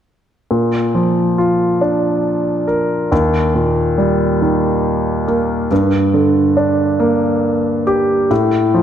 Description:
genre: pop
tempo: 46 BPM (dotted quarters)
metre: 6/8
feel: straight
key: Bb major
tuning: A4 = 441 Hz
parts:
  - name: clear concert grand piano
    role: accompaniment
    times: 0.5-8.8 s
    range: Eb2 to Bb4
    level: -13 LUFS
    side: equal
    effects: none
room: moderate concert hall reverb, RT60 1.9 s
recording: none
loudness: -13 LUFS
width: side -9 dB against mid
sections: 0.5-8.8 A section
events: none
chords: 0.5 Bb; 3.1 Eb; 5.7 Gm; 8.3 F/A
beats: | 0.50 1.81 | 3.11 4.41 | 5.71 7.00 | 8.30

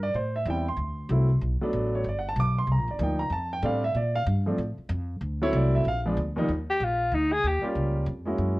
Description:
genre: jazz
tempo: 189 BPM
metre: 4/4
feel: swing 61% on 8ths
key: unclear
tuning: A4 = 441 Hz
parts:
  - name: warm grand piano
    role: accompaniment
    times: 0.0-8.6 s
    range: Eb2 to D6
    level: -28 LUFS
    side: right 1 dB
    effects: none
  - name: upright bass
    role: bass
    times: 0.0-8.6 s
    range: G1 to Bb2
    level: -27 LUFS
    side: equal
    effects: none
  - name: breathy alto saxophone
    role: melody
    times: 6.7-7.6 s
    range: Eb4 to Ab4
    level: -24 LUFS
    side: left 1 dB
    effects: none
room: light reverb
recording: worn, warbling old tape, cassette tape, warbly pitch drift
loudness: -24 LUFS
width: side -20 dB against mid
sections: 0.0-6.5 A section; 6.5-8.6 A section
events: alto saxophone solo 6.5-8.6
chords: 0.1 Am9; 0.8 D7; 1.4 Gmaj7; 2.7 Cm11; 3.3 F; 3.9 Bbmaj7; 5.2 D9; 5.8 Bb7b9; 6.5 Ebmaj9; 7.8 Gm7b5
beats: | 0.15 0.47 0.78 1.10 | 1.42 1.73 2.05 2.37 | 2.68 3.00 3.32 3.63 | 3.95 4.27 4.58 4.90 | 5.22 5.53 5.85 6.17 | 6.48 6.80 7.12 7.43 | 7.75 8.07 8.38

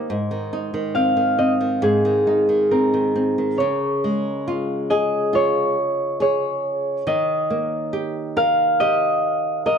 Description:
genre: children's music, lullaby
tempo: 69 BPM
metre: 4/4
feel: straight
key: unclear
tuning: A4 = 441 Hz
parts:
  - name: concert harp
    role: melody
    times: 0.0-9.8 s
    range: Ab4 to F5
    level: -20 LUFS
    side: equal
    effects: none
  - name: flamenco guitar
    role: accompaniment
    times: 0.0-9.8 s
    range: Ab2 to Bb4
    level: -23 LUFS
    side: right 1 dB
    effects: none
room: moderate studio ambience, RT60 0.5 s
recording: dark, warm production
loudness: -18 LUFS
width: side -6 dB against mid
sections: 0.0-3.6 A section; 3.6-9.8 B section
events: none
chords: 0.1 Abadd9; 3.6 Db; 7.1 Eb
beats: | 0.10 0.96 1.83 2.71 | 3.59 4.47 5.34 6.21 | 7.07 7.93 8.79 9.66

